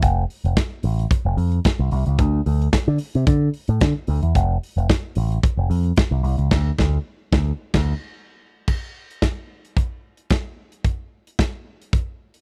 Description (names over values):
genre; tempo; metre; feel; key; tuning
disco; 111 BPM; 4/4; straight; unclear; A4 = 439 Hz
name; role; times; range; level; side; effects
picked electric bass with an envelope filter; bass; 0.0-7.9 s; F1 to D3; -21 LUFS; equal; none
modern studio drum kit; drums; 0.0-12.4 s; crash cymbal, hi-hat, kick drum, snare drum; -21 LUFS; equal; none
room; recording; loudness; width
little or no reverb; dry, close 1970s-style studio recording; -21 LUFS; mono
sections
0.0-8.7 A section; 8.7-12.4 B section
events
band accent 6.5-8.7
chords
none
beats
| 0.03 0.57 1.11 1.65 | 2.19 2.73 3.27 3.81 | 4.35 4.89 5.43 5.97 | 6.52 7.06 7.60 8.14 | 8.68 9.22 9.76 10.30 | 10.85 11.39 11.93